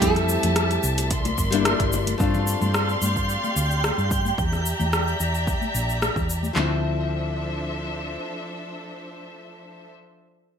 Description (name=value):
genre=sunset chillout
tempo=110 BPM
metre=4/4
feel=straight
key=D minor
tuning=A4 = 440 Hz
part: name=nylon-string guitar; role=melody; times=0.0-1.1 s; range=A4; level=-28 LUFS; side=left 1 dB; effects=ping-pong delay
part: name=nylon-string guitar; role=accompaniment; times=0.0-9.9 s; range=F3 to F4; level=-28 LUFS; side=moving between left 7 dB and right 5 dB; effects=auto-pan, ping-pong delay
part: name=muted studio string section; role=sustained chords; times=0.0-9.9 s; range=F3 to C6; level=-29 LUFS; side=left 1 dB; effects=none
part: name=hollow-body short-scale fingered electric bass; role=bass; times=0.0-8.2 s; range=G1 to G2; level=-25 LUFS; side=equal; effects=none
part: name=deep house drum kit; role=drums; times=0.0-6.7 s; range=handclaps, kick drum, snare drum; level=-27 LUFS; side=equal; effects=overdrive, gated reverb
part: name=deep house drum kit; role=drums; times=0.0-6.5 s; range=hi-hat, rim click, shaker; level=-27 LUFS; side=left 1 dB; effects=overdrive, gated reverb
part: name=congas and bongos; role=percussion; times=0.1-6.5 s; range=none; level=-34 LUFS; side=left 4 dB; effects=none
part: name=twinkling granular texture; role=texture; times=2.7-6.6 s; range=G5 to G6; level=-32 LUFS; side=right 4 dB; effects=built-in reverb, wide subtle chorus
room=moderate plate reverb, RT60 1.3 s, studio reverb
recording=bright 1980s-style digital production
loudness=-21 LUFS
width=side -7 dB against mid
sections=0.0-2.2 A section; 2.2-6.6 B section; 6.6-10.6 C section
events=filter sweep on fingered electric bass 2.2-6.6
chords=0.0 Fmaj9; 1.1 C9; 2.2 G7sus4; 4.4 Em7b5; 6.6 Dm9